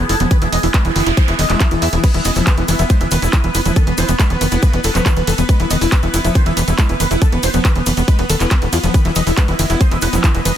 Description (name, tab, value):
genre	psychedelic trance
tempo	139 BPM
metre	4/4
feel	straight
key	E major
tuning	A4 = 442 Hz
part	dense compressed supersaw	melody	0.0-10.5 s	B3 to E5	-21 LUFS	right 1 dB	phaser, sidechain pumping, ping-pong delay
part	overtone-sweeping drone	sustained chords	0.0-10.6 s	B3 to D#5	-24 LUFS	equal	chorus, built-in reverb, sidechain pumping
part	overdriven acid bass	riff	0.0-10.5 s	D#3 to E4	-22 LUFS	moving between left 8 dB and right 8 dB	auto-pan, cassette tape, sidechain pumping, ping-pong delay
part	tight sequencer bass	bass	0.0-10.5 s	E1 to E2	-18 LUFS	equal	none
part	drum and bass drum kit	drums	0.1-10.5 s	crash cymbal, handclaps, hi-hat, ride cymbal	-22 LUFS	right 1 dB	none
part	electronic kick drum	drums	0.3-10.3 s	none	-13 LUFS	equal	none
part	noise sweep	sound effects	0.9-2.0 s	none	-27 LUFS	right 5 dB	none
part	tube shaker	percussion	2.0-10.5 s	none	-28 LUFS	left 7 dB	none
part	metallic wobble bass	second line	2.5-4.8, 9.4-10.2 s	B3 to E4	-31 LUFS	right 5 dB	none
room	digital ambience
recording	dense, heavily limited modern master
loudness	-12 LUFS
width	side -10 dB against mid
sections	0.0-10.6 A section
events	noise sweep 0.9-2.0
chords	0.0 E5